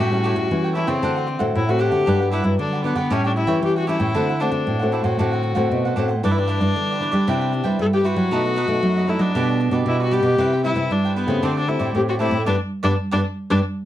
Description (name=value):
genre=samba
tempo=116 BPM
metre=4/4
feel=straight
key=G major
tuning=A4 = 440 Hz
part: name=clear viola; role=melody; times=0.0-13.6 s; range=B3 to A4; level=-23 LUFS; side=left 2 dB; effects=slapback echo
part: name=cavaquinho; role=accompaniment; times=0.0-13.6 s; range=D4 to G5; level=-28 LUFS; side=right 6 dB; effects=none
part: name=nylon-string guitar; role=accompaniment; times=0.0-13.6 s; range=F#2 to G4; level=-24 LUFS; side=left 2 dB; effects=none
part: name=nylon-string guitar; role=bass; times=0.0-13.6 s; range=G2 to G3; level=-22 LUFS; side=right 1 dB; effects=none
room=little or no reverb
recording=dry, close 1970s-style studio recording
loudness=-18 LUFS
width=side -12 dB against mid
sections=0.0-13.9 A section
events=band accent 12.5-13.9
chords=0.0 A7; 1.0 D7; 2.1 Gmaj7; 3.1 A7; 4.2 D7; 6.2 G6; 7.3 Cmaj7; 8.3 B7; 9.4 Em9/B; 10.4 Cmaj7; 11.4 D7sus4; 12.5 G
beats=0.51 1.03 1.55 | 2.07 2.60 3.12 3.64 | 4.16 4.68 5.20 5.72 | 6.24 6.76 7.28 7.79 | 8.31 8.83 9.35 9.87 | 10.39 10.91 11.43 11.95 | 12.47 12.99 13.51